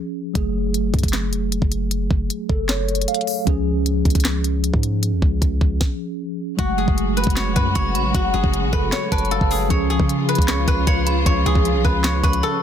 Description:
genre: hip hop, trap.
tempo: 154 BPM.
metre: 4/4.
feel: half-time.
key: F# harmonic minor.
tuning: A4 = 440 Hz.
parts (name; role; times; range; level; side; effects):
mellow tine electric piano; accompaniment; 0.0-12.6 s; E#3 to E#5; -24 LUFS; equal; medium stereo tremolo.
warm 808-style bass; bass; 0.4-12.4 s; E#1 to C#3; -22 LUFS; equal; none.
trap drum kit; drums; 0.4-12.4 s; handclaps, hi-hat, kick drum, snare drum; -20 LUFS; equal; soft clipping on snare.
guzheng; melody; 6.6-12.6 s; F#4 to C#5; -23 LUFS; left 1 dB; plate reverb, tape echo.
warm symphonic string section; sustained chords; 6.6-12.6 s; C#3 to F#4; -27 LUFS; left 3 dB; plate reverb.
metallic FM bell; second line; 7.8-12.6 s; A5 to C#6; -31 LUFS; right 5 dB; chorus, plate reverb, tape echo.
room: light reverb.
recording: dense, heavily limited modern master.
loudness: -17 LUFS.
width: side -9 dB against mid.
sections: 0.0-6.6 A section; 6.6-12.6 B section.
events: break 0.0-0.4, 12.4; stop 5.8-6.6.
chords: 0.4 F#madd9; 3.5 C#; 6.6 F#madd9; 9.7 C#.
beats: | 0.35 0.74 1.13 1.52 | 1.91 2.30 2.69 3.08 | 3.47 3.86 4.25 4.64 | 5.03 5.42 5.81 6.20 | 6.59 6.98 7.37 7.75 | 8.14 8.54 8.92 9.31 | 9.70 10.09 10.48 10.87 | 11.26 11.65 12.04 12.43.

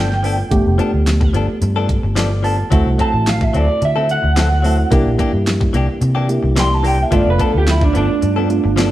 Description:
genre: straight-eighth soul blues.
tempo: 109 BPM.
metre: 4/4.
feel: straight.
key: G mixolydian.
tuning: A4 = 440 Hz.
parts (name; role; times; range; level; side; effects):
electric guitar through a small old amp; second line; 0.0-8.9 s; D4 to C6; -19 LUFS; right 3 dB; warbly pitch drift.
barky reed electric piano; accompaniment; 0.0-8.9 s; A3 to A5; -21 LUFS; right 2 dB; none.
direct-recorded clean electric guitar; stabs; 0.0-8.9 s; E3 to A4; -23 LUFS; left 4 dB; none.
vintage muted fingered electric bass; bass; 0.0-8.9 s; F1 to D3; -17 LUFS; equal; none.
pop drum kit; drums; 0.1-8.9 s; hi-hat, kick drum, snare drum; -20 LUFS; equal; none.
room: moderate stone room reverb, RT60 1.3 s.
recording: band playing live in one room.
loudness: -13 LUFS.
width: side -14 dB against mid.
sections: 0.0-8.9 A section.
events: clean electric guitar solo 0.0-8.9; reed electric piano fill 1.9-2.7.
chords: 0.0 G9; 2.7 D9; 4.9 C9; 7.1 G9.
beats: | 0.52 1.07 1.62 2.17 | 2.72 3.27 3.82 4.37 | 4.92 5.47 6.02 6.57 | 7.12 7.67 8.23 8.78.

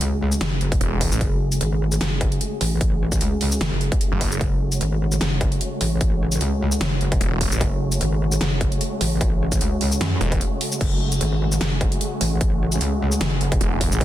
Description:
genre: heavy wobble dubstep.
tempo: 150 BPM.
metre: 4/4.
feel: swing 55% on 16ths, half-time.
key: F# minor.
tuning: A4 = 439 Hz.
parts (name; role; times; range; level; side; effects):
supersaw chords; sustained chords; 0.0-14.0 s; C#3 to C#5; -28 LUFS; equal; sidechain pumping, low-pass filter.
metallic wobble bass; bass; 0.0-14.0 s; F#1 to F#2; -22 LUFS; equal; chorus, overdrive.
dubstep drum kit; drums; 0.0-14.0 s; crash cymbal, hi-hat, shaker, snare drum; -26 LUFS; equal; overdrive.
electronic kick drum; drums; 0.7-14.0 s; none; -22 LUFS; equal; distortion.
snarling distorted saw bass; bass; 0.8-1.2, 4.1-4.4, 7.2-7.6, 10.2-10.4, 13.6-14.0 s; E1 to A1; -22 LUFS; equal; distortion, overdrive.
room: little or no reverb.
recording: dense, heavily limited modern master.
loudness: -19 LUFS.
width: side -13 dB against mid.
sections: 0.0-14.0 A section.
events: break 10.4-10.8.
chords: 0.0 F#madd9.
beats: 0.01 0.41 0.81 | 1.21 1.61 2.01 2.41 | 2.81 3.21 3.61 4.01 | 4.41 4.81 5.21 5.61 | 6.01 6.41 6.81 7.21 | 7.61 8.01 8.41 8.81 | 9.21 9.61 10.01 10.41 | 10.81 11.21 11.61 12.01 | 12.41 12.81 13.21 13.61 | 14.01.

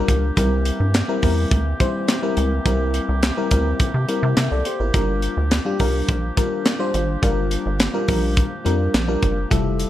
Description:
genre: early-eighties boogie funk.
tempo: 105 BPM.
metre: 4/4.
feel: straight.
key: G dorian.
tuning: A4 = 440 Hz.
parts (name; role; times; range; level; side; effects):
FM electric piano with soft pad layer; accompaniment; 0.0-9.9 s; G3 to E5; -23 LUFS; left 2 dB; chorus.
warm woodwind section; sustained chords; 0.0-9.9 s; E3 to E5; -30 LUFS; equal; none.
rubbery square bass; bass; 0.0-9.9 s; F1 to C3; -21 LUFS; equal; none.
tight funk drum kit; drums; 0.1-9.9 s; handclaps, hi-hat, kick drum, snare drum; -21 LUFS; equal; none.
room: studio reverb.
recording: none.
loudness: -18 LUFS.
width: side -13 dB against mid.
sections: 0.0-9.9 A section.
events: none.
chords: 0.4 C7; 4.9 Gm7.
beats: | 0.37 0.94 1.51 2.08 | 2.66 3.23 3.80 4.37 | 4.94 5.51 6.08 6.66 | 7.23 7.80 8.37 8.94 | 9.51.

